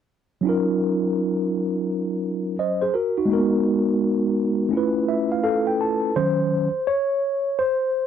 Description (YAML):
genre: hip hop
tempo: 84 BPM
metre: 4/4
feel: swing 65% on 16ths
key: unclear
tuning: A4 = 439 Hz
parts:
  - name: mellow tine electric piano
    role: solo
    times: 0.4-8.1 s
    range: Eb3 to A5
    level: -20 LUFS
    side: equal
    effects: medium stereo tremolo
room: moderate booth ambience, RT60 0.2 s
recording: dry, close 1970s-style studio recording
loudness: -20 LUFS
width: side -8 dB against mid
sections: 0.4-6.2 A section; 6.2-8.1 B section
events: tine electric piano fill 4.7-6.2; tine electric piano solo 6.2-8.1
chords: 0.4 Ebm9; 3.3 Abm9; 4.7 Db7alt; 6.2 Ebm7